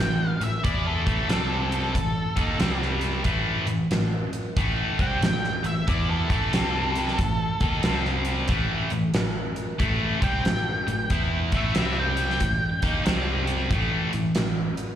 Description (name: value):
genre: blues rock power trio and southern rock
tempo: 92 BPM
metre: 4/4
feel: swing 65% on 8ths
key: A minor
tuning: A4 = 440 Hz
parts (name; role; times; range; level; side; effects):
- octave-fuzz lead guitar; melody; 0.0-13.2 s; A4 to G5; -30 LUFS; equal; distortion, tape echo
- distorted electric guitar; riff; 0.0-14.7 s; A2 to E4; -27 LUFS; equal; overdrive, slapback echo
- vintage muted picked electric bass; bass; 0.0-14.7 s; A1 to E2; -28 LUFS; equal; none
- huge arena drum kit; drums; 0.0-14.9 s; hi-hat, kick drum, snare drum; -27 LUFS; equal; none
room: light reverb, small room ambience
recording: live gig heard through the venue's PA, club reverb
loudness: -22 LUFS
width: side -10 dB against mid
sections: 0.0-15.0 A section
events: none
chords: 0.0 A5; 1.3 C5; 2.0 A5; 2.6 C5; 3.3 Am; 6.5 C5; 7.2 A5; 7.8 C5; 8.5 Am; 11.7 C5; 12.4 A5; 13.0 C5; 13.7 A5